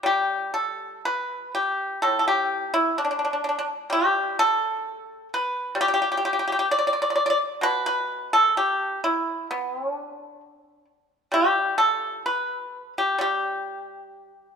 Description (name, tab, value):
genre	chinese traditional, Chinese solo plucked strings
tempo	64 BPM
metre	4/4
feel	rubato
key	G gong mode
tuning	A4 = 440 Hz
part	pipa	solo	0.0-14.6 s	A2 to D5	-22 LUFS	equal	none
room	moderate recital hall reverb, RT60 1.7 s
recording	minimal, uncompressed stereo recording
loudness	-22 LUFS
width	side -6 dB against mid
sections	0.0-14.6 A section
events	none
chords	none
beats	| 0.05 1.04 2.02 2.98 | 3.92 4.85 5.79 6.72 | 7.64 8.56 9.49 10.42 | 11.34 12.26 13.21 14.21